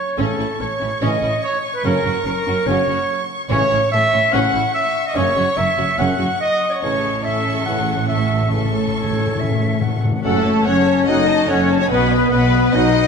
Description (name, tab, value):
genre	cinematic, heroic adventure film score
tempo	144 BPM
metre	4/4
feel	straight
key	A lydian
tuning	A4 = 438 Hz
part	rich symphonic violin section	melody	0.0-13.1 s	A4 to C#6	-28 LUFS	left 4 dB	none
part	mellow clarinet	second line	0.0-13.1 s	A4 to F#5	-26 LUFS	left 2 dB	none
part	mellow trumpet	stabs	0.0-13.1 s	A3 to F#5	-21 LUFS	right 2 dB	none
part	warm chamber violin section	second line	0.2-13.1 s	C#4 to D#5	-28 LUFS	left 4 dB	none
part	dark symphonic viola section	accompaniment	0.2-13.1 s	C#4 to A5	-26 LUFS	right 1 dB	none
part	mellow trombone section	sustained chords	0.2-12.9 s	C#3 to C#4	-29 LUFS	right 3 dB	none
part	warm French horn section	sustained chords	0.2-13.1 s	A3 to D#4	-22 LUFS	left 4 dB	none
part	rich studio cello section	bass	0.2-13.1 s	F#2 to B2	-25 LUFS	right 3 dB	none
part	warm symphonic double bass section	bass	0.2-13.1 s	F#1 to B1	-25 LUFS	right 3 dB	none
part	timpani	percussion	0.2-0.8, 3.5-4.1, 6.8-10.2 s	A2	-25 LUFS	left 4 dB	none
part	concert flute	second line	9.0-13.1 s	A4 to F#5	-26 LUFS	left 2 dB	none
room	wet scoring stage reverb, RT60 1.9 s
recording	none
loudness	-15 LUFS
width	side -6 dB against mid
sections	0.0-10.2 A section; 10.2-13.1 B section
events	timpani fill 6.8-10.2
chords	0.2 A; 1.9 F#; 3.5 A; 5.2 F#; 6.8 A; 10.2 F#m; 11.9 B